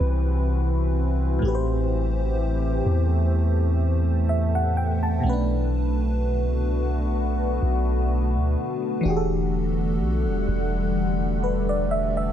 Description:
contemporary R&B; 63 BPM; 4/4; swing 54% on 16ths; E minor; A4 = 440 Hz
FM electric piano with soft pad layer; accompaniment; 0.0-12.3 s; A2 to A5; -28 LUFS; equal; chorus, phaser
deep dark ambient pad; sustained chords; 0.0-12.3 s; D3 to F#5; -27 LUFS; left 1 dB; chorus, built-in reverb
long sustained 808-style bass; bass; 0.0-12.3 s; E1 to E2; -23 LUFS; equal
light reverb; -21 LUFS; side -10 dB against mid
0.0-9.0 A section; 9.0-12.3 B section
0.0 Cmaj7; 1.4 Am7; 5.2 Bm7; 9.0 Em11

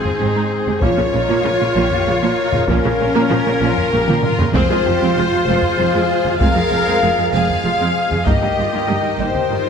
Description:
cinematic, epic orchestral film score; 64 BPM (dotted quarters); 6/8; straight; A4 = 440 Hz
warm symphonic violin section; melody; 0.0-9.7 s; Ab4 to F5; -25 LUFS; left 3 dB
mellow hollow flute section; second line; 0.0-9.7 s; C4 to Ab4; -23 LUFS; right 3 dB
warm symphonic violin section; second line; 0.0-9.7 s; C4 to Bb4; -26 LUFS; left 4 dB
mellow French horn section; sustained chords; 0.0-9.7 s; Ab4 to F5; -20 LUFS; left 5 dB
mellow woodwind section; sustained chords; 0.0-9.7 s; G3 to G5; -24 LUFS; left 1 dB
taiko ensemble; drums; 0.0-9.6 s; -22 LUFS; equal
warm symphonic viola section; accompaniment; 0.2-9.7 s; C3 to Eb4; -23 LUFS; right 3 dB
rich symphonic double bass section; bass; 0.2-9.6 s; F1 to Bb1; -24 LUFS; right 3 dB
warm symphonic cello section; bass; 0.2-9.7 s; F2 to Bb2; -23 LUFS; right 4 dB
wet concert hall reverb, RT60 2.3 s; -14 LUFS; side -6 dB against mid
0.0-9.7 A section
drum fill 4.1-4.5
0.0 Ab; 0.8 Bbm; 4.5 Fm; 8.3 Eb/G

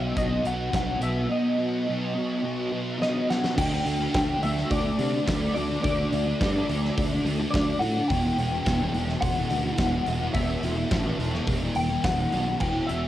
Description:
rock, shoegaze and dream pop; 106 BPM; 4/4; straight; E minor; A4 = 440 Hz
electric guitar through a small old amp; melody; 0.0-13.1 s; D5 to G5; -30 LUFS; left 2 dB; analog chorus, cassette tape, analog delay
thick fuzz guitar; riff; 0.0-13.1 s; E2 to D4; -27 LUFS; equal; distortion, ensemble chorus, cassette tape
fingered electric bass; bass; 0.0-13.1 s; E1 to C3; -29 LUFS; equal
huge arena drum kit; drums; 0.2-13.0 s; crash cymbal, hi-hat, kick drum, snare drum; -30 LUFS; equal; cassette tape
light reverb, small room ambience; home recording on cassette; -23 LUFS; side -13 dB against mid
0.0-3.6 A section; 3.6-12.6 B section
drum fill 3.0-3.6
0.0 B; 3.6 D5; 8.1 Em; 10.4 E5

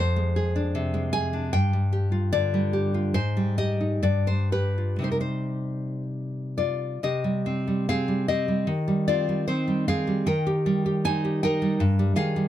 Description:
romantic piece for solo classical guitar; 57-82 BPM; 2/4; rubato; C minor; A4 = 440 Hz
nylon-string guitar; solo; 0.0-12.5 s; F2 to Ab5; -23 LUFS; equal
little or no reverb; close, detailed microphones; -23 LUFS; side -12 dB against mid
0.0-7.0 A section; 7.0-12.5 B section
0.0 Dm7b5/F; 1.5 G5; 3.2 Abmaj7; 4.0 G7; 5.0 Cm; 8.7 Cm/Eb; 10.3 Eb; 11.8 Eb/G

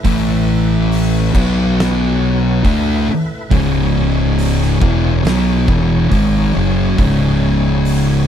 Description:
stoner and doom metal; 69 BPM; 4/4; straight; C# phrygian; A4 = 440 Hz
tonewheel organ; sustained chords; 0.0-8.3 s; A3 to C#5; -28 LUFS; right 1 dB; slow rotary speaker, overdrive, chorus vibrato
thick fuzz guitar; riff; 0.0-8.3 s; C#2 to D4; -17 LUFS; right 9 dB; distortion
oversized low-tuned drum kit; drums; 0.0-8.1 s; crash cymbal, hi-hat, kick drum, snare drum; -21 LUFS; equal
thick fuzz guitar; riff; 0.1-8.3 s; C#2 to D4; -17 LUFS; left 9 dB; distortion
fuzz fingered electric bass; bass; 0.1-8.2 s; C#1 to D2; -19 LUFS; equal; overdrive
little or no reverb; dark, warm production; -12 LUFS; side -9 dB against mid
0.0-8.3 A section
0.0 A5; 1.4 B5; 2.7 A5; 3.5 C#m

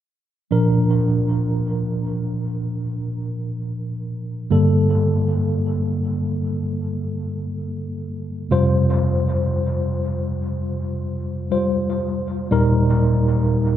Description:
pop; 60 BPM; 4/4; straight; Bb major; A4 = 440 Hz
tine electric piano; accompaniment; 0.5-13.8 s; Eb2 to C5; -19 LUFS; equal; medium stereo tremolo, dub echo
moderate spring reverb, RT60 2.2 s; echo-heavy mix; -19 LUFS; side -11 dB against mid
0.5-13.8 A section
0.5 Bb; 4.5 Gmadd9; 8.5 Fsus2; 12.5 Eb

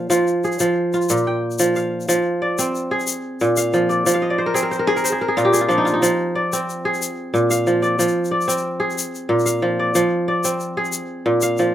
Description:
west african traditional, West African string and xylophone music; 122 BPM (dotted quarters); 12/8; straight; F dorian; A4 = 439 Hz
kora; arpeggios; 0.0-11.7 s; Bb2 to G5; -17 LUFS; equal
tube shaker; percussion; 0.1-11.6 s; -26 LUFS; left 5 dB
light reverb; recorded outdoors, with no room sound; -17 LUFS; side -11 dB against mid
0.0-2.1 A section; 2.1-11.7 B section
kora fill 4.1-6.0
0.1 Fm; 1.1 Bb5; 2.1 Fm; 3.1 Bb; 4.1 Fm; 5.0 Bb5; 6.0 Fm; 7.0 Bb; 8.0 Fm; 9.0 Bb; 10.0 Fm; 10.9 Bb

